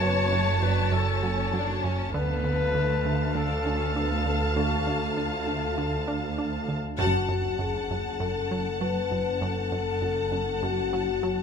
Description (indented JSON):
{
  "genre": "cinematic, suspense film score",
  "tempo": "99 BPM",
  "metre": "4/4",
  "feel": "straight",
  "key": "F# harmonic minor",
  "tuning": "A4 = 443 Hz",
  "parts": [
    { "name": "rich studio violin section", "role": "melody", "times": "0.0-11.4 s", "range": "A5", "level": "-33 LUFS", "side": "left 3 dB", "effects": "none" },
    { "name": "clear clarinet", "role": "second line", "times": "0.0-6.4 s", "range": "F4 to C#5", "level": "-32 LUFS", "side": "left 4 dB", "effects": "none" },
    { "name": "rich studio violin section", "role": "second line", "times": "0.0-11.4 s", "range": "A3 to F#5", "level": "-36 LUFS", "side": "left 3 dB", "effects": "none" },
    { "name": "warm studio viola section", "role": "accompaniment", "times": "0.0-11.4 s", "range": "D3 to F5", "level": "-35 LUFS", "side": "equal", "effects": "none" },
    { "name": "plucky analog bass", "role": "riff", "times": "0.0-11.4 s", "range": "F#2 to D4", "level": "-32 LUFS", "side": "right 3 dB", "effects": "none" },
    { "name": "dark studio double bass section", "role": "bass", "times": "0.0-11.4 s", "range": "F#1 to D2", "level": "-33 LUFS", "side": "right 4 dB", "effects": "none" },
    { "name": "warm studio cello section", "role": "bass", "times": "0.0-11.4 s", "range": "D2 to F#2", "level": "-32 LUFS", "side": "right 3 dB", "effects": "none" },
    { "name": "swarming drone", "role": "drone", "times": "0.1-11.4 s", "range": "F#1 to D2", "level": "-37 LUFS", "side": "equal", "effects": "built-in reverb" },
    { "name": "dark French horn section", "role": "sustained chords", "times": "7.0-11.4 s", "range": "F#4 to B4", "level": "-29 LUFS", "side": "left 9 dB", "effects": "none" }
  ],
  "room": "moderate concert hall reverb, RT60 1.8 s",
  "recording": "none",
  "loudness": "-24 LUFS",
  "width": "side -6 dB against mid",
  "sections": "0.0-7.0 A section; 7.0-11.4 A section",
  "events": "band accent 7.0-7.6",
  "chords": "0.0 F#m; 2.1 Dm; 7.0 F#m"
}